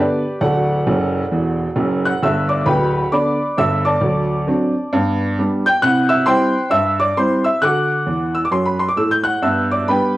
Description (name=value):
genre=jazz, stride piano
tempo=133 BPM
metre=4/4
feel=swing 61% on 8ths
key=G major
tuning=A4 = 440 Hz
part: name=clear upright piano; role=solo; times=0.0-10.2 s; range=D1 to G6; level=-15 LUFS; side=equal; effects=cassette tape
room=wet studio reverb, RT60 0.6 s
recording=home recording on cassette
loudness=-15 LUFS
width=side -16 dB against mid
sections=0.0-2.2 A section; 2.2-10.2 B section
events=upright piano fill 0.9-2.2, 8.1-9.4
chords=0.4 D; 2.2 G; 4.0 D7; 4.9 G; 5.8 C; 7.6 D; 9.4 G